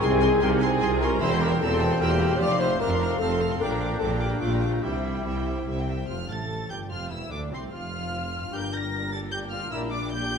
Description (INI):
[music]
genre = classical, dramatic, fast romantic movement for symphony orchestra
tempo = 150 BPM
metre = 3/4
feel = rubato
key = F major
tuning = A4 = 441 Hz
[part]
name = warm chamber violin section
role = melody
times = 0.0-10.4 s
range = E5 to Bb6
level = -35 LUFS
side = left 1 dB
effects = none
[part]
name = hollow concert flute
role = second line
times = 0.0-10.4 s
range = C5 to D6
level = -36 LUFS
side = equal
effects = none
[part]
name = mellow clarinet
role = second line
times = 0.0-10.4 s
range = A3 to Bb4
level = -39 LUFS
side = left 1 dB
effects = none
[part]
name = mellow cor anglais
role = second line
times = 0.0-10.4 s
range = G3 to Bb4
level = -37 LUFS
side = right 2 dB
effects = none
[part]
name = warm symphonic violin section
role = second line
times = 0.0-10.4 s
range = C4 to C6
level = -39 LUFS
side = left 2 dB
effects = none
[part]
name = rich symphonic viola section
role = accompaniment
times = 0.0-10.4 s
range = G3 to D5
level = -36 LUFS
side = right 1 dB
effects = none
[part]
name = bright trombone section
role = sustained chords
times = 0.0-9.9 s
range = G2 to D4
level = -38 LUFS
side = right 3 dB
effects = none
[part]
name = dark French horn section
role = sustained chords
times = 0.0-9.9 s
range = C3 to D5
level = -28 LUFS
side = left 4 dB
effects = none
[part]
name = concert harp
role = arpeggios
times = 0.0-10.4 s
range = F2 to C5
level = -36 LUFS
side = left 9 dB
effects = none
[part]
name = mellow trumpet section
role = stabs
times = 0.0-9.9 s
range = Bb4 to A5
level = -37 LUFS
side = equal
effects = none
[part]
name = mellow tuba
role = bass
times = 0.0-10.4 s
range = E1 to D2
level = -32 LUFS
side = right 3 dB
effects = none
[part]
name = rich symphonic cello section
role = bass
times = 0.0-10.4 s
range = C2 to C3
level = -32 LUFS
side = right 2 dB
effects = none
[part]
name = warm symphonic double bass section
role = bass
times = 0.0-10.4 s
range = E1 to D2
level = -32 LUFS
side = right 2 dB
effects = none
[sound]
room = wet scoring stage reverb, RT60 1.8 s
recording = minimal, uncompressed stereo recording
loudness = -23 LUFS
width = side -6 dB against mid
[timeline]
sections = 0.0-6.1 A section; 6.1-10.4 B section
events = none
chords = 0.0 Ab/C; 1.2 C7/E; 2.4 F; 3.6 Gm/Bb; 4.8 C; 6.1 F; 8.5 Gm; 9.7 Gm/Bb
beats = | 0.03 0.43 0.82 | 1.22 1.61 2.01 | 2.40 2.80 3.20 | 3.60 3.99 4.40 | 4.83 5.25 5.67 | 6.10 6.50 6.91 | 7.31 7.73 8.13 | 8.53 8.93 9.32 | 9.71 10.12